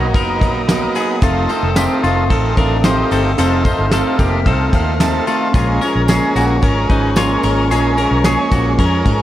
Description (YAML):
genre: jangly indie pop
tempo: 111 BPM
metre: 4/4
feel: straight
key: unclear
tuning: A4 = 444 Hz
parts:
  - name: electric guitar through a small old amp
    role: accompaniment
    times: 0.0-9.2 s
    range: F2 to D#4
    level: -20 LUFS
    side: right 3 dB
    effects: none
  - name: overdriven combo organ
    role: accompaniment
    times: 0.0-9.2 s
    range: B3 to A5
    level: -21 LUFS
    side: right 3 dB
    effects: plate reverb
  - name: warm studio string section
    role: sustained chords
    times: 0.0-9.2 s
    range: A4 to F6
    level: -25 LUFS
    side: left 2 dB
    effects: plate reverb
  - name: twelve-string electric guitar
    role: arpeggios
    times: 0.0-9.2 s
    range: G#3 to C#5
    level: -20 LUFS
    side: left 6 dB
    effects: plate reverb
  - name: vintage muted fingered electric bass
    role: bass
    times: 0.0-9.2 s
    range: F1 to G#2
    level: -19 LUFS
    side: equal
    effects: none
  - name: soft brush drum kit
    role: drums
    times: 0.1-9.2 s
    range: hi-hat, kick drum, ride cymbal, snare drum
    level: -19 LUFS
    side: equal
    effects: vintage 12-bit sampler grit
  - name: tambourine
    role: percussion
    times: 0.1-9.2 s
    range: none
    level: -35 LUFS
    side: right 5 dB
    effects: none
room: light reverb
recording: none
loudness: -12 LUFS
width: side -13 dB against mid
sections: 0.0-9.2 A section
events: transistor combo organ fill 4.5-5.5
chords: 0.0 Bmaj7; 1.2 F7; 5.5 A#m7